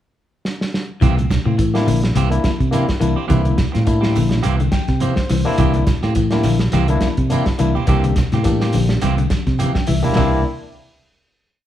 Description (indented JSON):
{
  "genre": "afrobeat",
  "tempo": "105 BPM",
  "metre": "4/4",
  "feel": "swing 56% on 16ths",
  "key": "C mixolydian",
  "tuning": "A4 = 440 Hz",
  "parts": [
    { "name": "warm soul drum kit", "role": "drums", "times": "0.5-10.3 s", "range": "hi-hat, kick drum, snare drum, toms", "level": "-21 LUFS", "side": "right 1 dB", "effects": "none" },
    { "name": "semi-hollow electric guitar", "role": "arpeggios", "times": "1.0-10.3 s", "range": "Bb2 to E3", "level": "-23 LUFS", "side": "left 6 dB", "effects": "spring reverb" },
    { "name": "semi-hollow electric guitar", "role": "stabs", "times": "1.0-10.4 s", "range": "E3 to G4", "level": "-26 LUFS", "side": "right 5 dB", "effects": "none" },
    { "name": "fingered electric bass", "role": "bass", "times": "1.0-10.4 s", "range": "Bb1 to C3", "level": "-18 LUFS", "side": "equal", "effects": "none" },
    { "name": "congas", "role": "percussion", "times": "1.0-10.3 s", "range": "none", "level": "-25 LUFS", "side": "right 2 dB", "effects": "none" },
    { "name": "shekere", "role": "percussion", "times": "1.0-10.3 s", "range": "none", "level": "-31 LUFS", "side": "right 3 dB", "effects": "none" },
    { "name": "barky tine electric piano", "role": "accompaniment", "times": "1.7-10.4 s", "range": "Bb3 to G5", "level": "-22 LUFS", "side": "left 4 dB", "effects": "none" }
  ],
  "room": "moderate large studio reverb, RT60 0.8 s",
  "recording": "band playing live in one room",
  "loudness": "-15 LUFS",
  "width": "side -11 dB against mid",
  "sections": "0.0-1.0 pickup bar; 1.0-10.2 groove; 10.2-11.7 final chord",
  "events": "drum fill 0.4-1.0, 9.7-10.2; tine electric piano fill 4.4-5.6, 9.3-10.2",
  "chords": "0.0 N.C.; 1.0 C7"
}